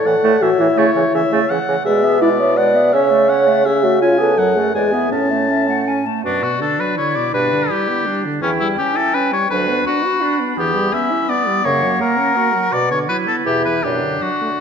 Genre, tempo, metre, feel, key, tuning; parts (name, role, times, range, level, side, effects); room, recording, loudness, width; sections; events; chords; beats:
quick classical-period movement for wind quintet; 166 BPM; 3/4; straight; A major, B minor from 6.2 s; A4 = 441 Hz
silver concert flute; melody; 0.0-14.6 s; A4 to B5; -24 LUFS; left 5 dB
clear oboe; second line; 0.0-14.6 s; C#4 to A5; -20 LUFS; left 4 dB
mellow French horn; accompaniment; 0.0-14.5 s; F#2 to D5; -18 LUFS; equal
bright clarinet; accompaniment; 0.1-14.6 s; E3 to F#4; -23 LUFS; right 8 dB
mellow bassoon; bass; 0.1-14.2 s; D2 to C#3; -21 LUFS; right 2 dB
wet scoring stage reverb, RT60 1.6 s; -14 LUFS; side -7 dB against mid
0.0-6.2 A section; 6.2-14.6 B section
0.0 A; 0.8 A/C#; 1.9 E7/B; 2.9 A/C#; 4.0 C#7; 4.4 F#m; 4.7 E7; 5.1 A; 6.2 Bm/F#; 7.3 G; 8.4 C#dim/E; 9.5 Bm/D; 10.6 Em; 11.7 F#; 12.7 Bm; 13.5 Em; 13.8 Bm/F#
0.06 0.42 | 0.78 1.14 1.50 | 1.86 2.21 2.57 | 2.93 3.29 3.65 | 4.01 4.38 4.74 | 5.12 5.49 5.87 | 6.24 6.61 6.97 | 7.34 7.70 8.06 | 8.43 8.79 9.15 | 9.51 9.86 10.22 | 10.58 10.94 11.29 | 11.65 12.01 12.37 | 12.73 13.09 13.46 | 13.84 14.22 14.60